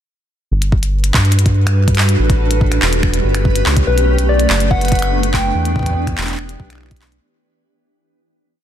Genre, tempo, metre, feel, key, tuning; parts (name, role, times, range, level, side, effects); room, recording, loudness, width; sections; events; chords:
IDM; 143 BPM; 4/4; straight; G lydian; A4 = 440 Hz
granular cloud pad; sustained chords; 1.1-7.2 s; E3 to B4; -21 LUFS; right 2 dB; built-in reverb
round analog bass; bass; 0.5-7.2 s; E1 to G2; -15 LUFS; equal
backwards swelling texture; texture; 1.9-7.2 s; B4; -27 LUFS; left 1 dB; built-in reverb
glitchy drum kit; drums; 0.6-7.2 s; finger snaps, handclaps, hi-hat; -20 LUFS; left 1 dB; overdrive, digital delay
electronic kick drum; drums; 0.7-7.0 s; -16 LUFS; equal; overdrive
soft struck synth lead; melody; 3.9-6.8 s; B4 to G5; -20 LUFS; left 3 dB; chorus
digital ambience; dense, heavily limited modern master; -12 LUFS; side -10 dB against mid
0.5-7.2 groove
fade-out 5.0-7.2
0.5 Gmaj7; 2.2 A9; 3.9 Bm7; 5.5 Em7